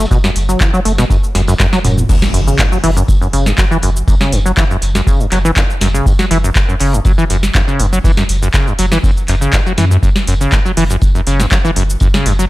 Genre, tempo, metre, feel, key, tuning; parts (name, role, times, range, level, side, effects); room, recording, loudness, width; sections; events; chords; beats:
acid house; 121 BPM; 4/4; straight; A4 = 440 Hz
acid bass, saw; riff; 0.0-12.5 s; E2 to A3; -16 LUFS; equal; analog chorus, sidechain pumping, dub echo
warm sub bass; bass; 0.0-12.5 s; E1 to F#2; -15 LUFS; equal; sidechain pumping
booming analog drum machine; drums; 0.0-12.5 s; cabasa, crash cymbal, handclaps, hi-hat, snare drum, toms; -18 LUFS; equal
cloth-damped thuddy drum kit; drums; 0.0-12.5 s; hi-hat, snare drum, tambourine; -31 LUFS; equal; sidechain pumping on hats, high-pass filter on hats, high-pass filter on snare, sidechain pumping on perc, high-pass filter on perc, high-pass filter on room
electronic kick drum; drums; 0.1-12.1 s; -14 LUFS; equal
impact; sound effects; 2.1-4.1 s; -22 LUFS; equal
digital ambience; -10 LUFS; side -18 dB against mid
0.0-2.1 A section; 2.1-12.5 B section
drum fill 1.3-2.1; drop 2.1-12.5; impact 2.1-4.1
0.0 Esus2; 2.1 F#5
| 0.11 0.60 1.10 1.60 | 2.09 2.59 3.08 3.58 | 4.08 4.57 5.07 5.56 | 6.06 6.56 7.05 7.55 | 8.04 8.54 9.04 9.53 | 10.03 10.52 11.02 11.52 | 12.01